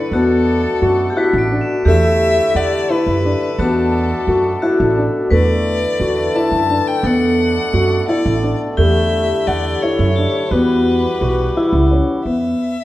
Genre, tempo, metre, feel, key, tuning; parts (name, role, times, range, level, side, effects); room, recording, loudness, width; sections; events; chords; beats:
contemporary instrumental, chamber music in an uneven meter; 173 BPM (eighths); 5/8; straight; A4 = 443 Hz
rich violin; melody; 0.0-12.8 s; A4 to A5; -22 LUFS; left 4 dB
vibraphone with medium hard mallets; second line; 0.0-12.2 s; E4 to B4; -20 LUFS; left 1 dB
hand-pumped harmonium; sustained chords; 0.0-12.2 s; B2 to F#4; -23 LUFS; equal
crotales; texture; 0.0-2.6, 8.8-10.8 s; A6 to A7; -30 LUFS; right 1 dB
dark baby grand piano; arpeggios; 0.1-12.7 s; A3 to F#5; -19 LUFS; left 1 dB
upright bass; bass; 0.1-12.5 s; A1 to F#2; -19 LUFS; right 2 dB
moderate recital hall reverb, RT60 1.2 s; dark, warm production; -13 LUFS; side -15 dB against mid
0.0-12.3 A section
0.1 Bm7/E; 1.9 Asus4/E; 3.6 Bm7/E; 5.3 Asus4/E; 7.0 Bm7/E; 8.8 Asus4/E; 10.5 Emadd9; 12.3 E5
| 0.12 0.47 0.81 1.16 1.50 | 1.85 2.20 2.54 2.89 3.24 | 3.58 3.93 4.28 4.62 4.97 | 5.32 5.66 6.01 6.35 6.70 | 7.05 7.39 7.74 8.09 8.44 | 8.78 9.13 9.48 9.82 10.17 | 10.52 10.87 11.21 11.56 11.91 | 12.26 12.60